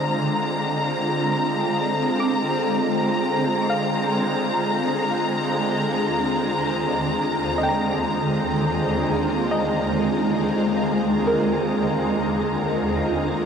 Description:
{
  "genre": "ambient",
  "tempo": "free time",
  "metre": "none",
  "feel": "none",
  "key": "unclear",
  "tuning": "A4 = 438 Hz",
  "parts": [
    { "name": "shimmering ambient pad", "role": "sustained chords", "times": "0.0-13.5 s", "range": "Eb2 to F4", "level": "-21 LUFS", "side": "equal", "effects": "chorus, built-in reverb, phaser" },
    { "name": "soft round pluck", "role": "arpeggios", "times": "0.0-13.0 s", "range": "Bb4 to D6", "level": "-31 LUFS", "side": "equal", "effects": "none" },
    { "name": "warm symphonic violin section", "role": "texture", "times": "0.0-13.5 s", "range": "Bb5", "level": "-27 LUFS", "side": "left 1 dB", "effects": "none" }
  ],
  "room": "wet shimmer reverb, RT60 8.9 s",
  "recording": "none",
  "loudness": "-20 LUFS",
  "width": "side -7 dB against mid",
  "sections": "0.0-13.5 A section",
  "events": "none",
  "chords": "0.0 Bb9/D; 5.2 Eb6; 12.6 Bmaj9 (rootless)",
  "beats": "free time"
}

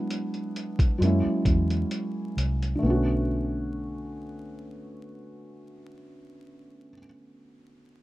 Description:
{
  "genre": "lo-fi hip hop",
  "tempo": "66 BPM",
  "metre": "4/4",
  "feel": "swing 55% on 16ths",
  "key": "B dorian",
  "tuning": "A4 = 440 Hz",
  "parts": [
    { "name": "felt-muted upright piano", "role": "accompaniment", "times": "0.0-8.0 s", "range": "D3 to F#4", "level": "-29 LUFS", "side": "equal", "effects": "low-pass filter" },
    { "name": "lo-fi sampler-style drum kit", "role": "drums", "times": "0.1-2.8 s", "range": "hi-hat, kick drum", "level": "-25 LUFS", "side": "equal", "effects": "overdrive, vintage 12-bit sampler grit" },
    { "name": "vintage muted fingered electric bass", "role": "bass", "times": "1.0-7.0 s", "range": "B1 to F#2", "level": "-26 LUFS", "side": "equal", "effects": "none" }
  ],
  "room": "little or no reverb",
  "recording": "rough home demo mix, vinyl crackle",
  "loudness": "-24 LUFS",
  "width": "side -17 dB against mid",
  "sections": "0.0-2.8 A section; 2.8-6.5 B section",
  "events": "none",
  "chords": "0.0 E9; 1.0 F#9; 2.8 Bm7",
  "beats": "0.09 1.00 1.91 | 2.82 3.73 4.64 5.55"
}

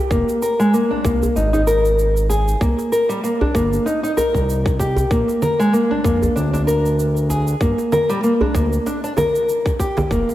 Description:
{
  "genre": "organic downtempo",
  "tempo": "96 BPM",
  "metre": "4/4",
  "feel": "swing 56% on 16ths",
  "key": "unclear",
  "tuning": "A4 = 440 Hz",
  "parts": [
    { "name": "nylon-string guitar", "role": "arpeggios", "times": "0.0-10.3 s", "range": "G3 to Bb4", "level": "-18 LUFS", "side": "equal", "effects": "low-pass filter, tape echo" },
    { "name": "smooth synth bass", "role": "bass", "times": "0.1-10.2 s", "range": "F1 to D2", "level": "-20 LUFS", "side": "equal", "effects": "tube saturation, sidechain pumping" },
    { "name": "electronic kick drum", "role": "drums", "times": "0.1-10.2 s", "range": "none", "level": "-22 LUFS", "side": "equal", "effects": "none" },
    { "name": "shaker and congas", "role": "drums", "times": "0.1-10.3 s", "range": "none", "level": "-28 LUFS", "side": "right 2 dB", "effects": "none" },
    { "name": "djembe", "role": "percussion", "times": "0.3-10.3 s", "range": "none", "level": "-26 LUFS", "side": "right 1 dB", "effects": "none" }
  ],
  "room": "wet lush hall reverb, RT60 2.2 s",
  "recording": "big arena sound",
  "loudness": "-16 LUFS",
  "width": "side -14 dB against mid",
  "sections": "0.0-10.3 A section",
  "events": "none",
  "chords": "0.1 N.C.; 2.6 C7(no3); 5.1 Bb; 7.6 Gm",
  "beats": "| 0.11 0.74 1.36 1.99 | 2.61 3.24 3.86 4.49 | 5.11 5.74 6.36 6.99 | 7.61 8.24 8.86 9.49 | 10.11"
}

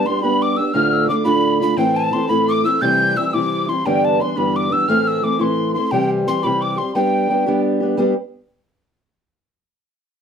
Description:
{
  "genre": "celtic folk, Celtic jig",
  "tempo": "116 BPM (dotted quarters)",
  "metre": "6/8",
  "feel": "straight",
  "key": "G mixolydian",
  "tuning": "A4 = 440 Hz",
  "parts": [
    { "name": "mellow hollow tin whistle", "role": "melody", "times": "0.0-7.6 s", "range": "G5 to G6", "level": "-20 LUFS", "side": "equal", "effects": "none" },
    { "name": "wooden whistle", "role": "second line", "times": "0.0-7.7 s", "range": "G5 to A6", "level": "-25 LUFS", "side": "left 4 dB", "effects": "none" },
    { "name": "fingerpicked acoustic archtop guitar", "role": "accompaniment", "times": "0.0-8.1 s", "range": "D2 to G4", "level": "-18 LUFS", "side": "equal", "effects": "none" }
  ],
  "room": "moderate studio reverb, RT60 0.6 s",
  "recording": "none",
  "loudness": "-15 LUFS",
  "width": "side -7 dB against mid",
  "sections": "0.0-8.0 A section; 8.0-9.0 B section",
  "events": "none",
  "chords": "0.0 G; 0.7 Dm; 1.8 Am; 2.8 C; 3.8 G6; 4.9 Am; 5.9 C; 7.0 G",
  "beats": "0.23 | 0.75 1.26 | 1.78 2.30 | 2.81 3.33 | 3.85 4.37 | 4.88 5.40 | 5.92 6.43 | 6.95 7.47 | 7.98"
}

